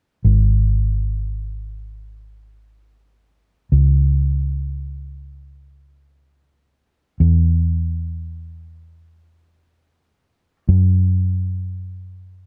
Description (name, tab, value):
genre	pop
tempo	free time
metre	none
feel	none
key	unclear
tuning	A4 = 440 Hz
part	vintage muted fingered electric bass	bass	0.2-12.5 s	G#1 to F#2	-19 LUFS	equal	none
room	little or no reverb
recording	dry, close 1970s-style studio recording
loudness	-19 LUFS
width	mono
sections	0.2-12.5 A section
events	none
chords	none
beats	free time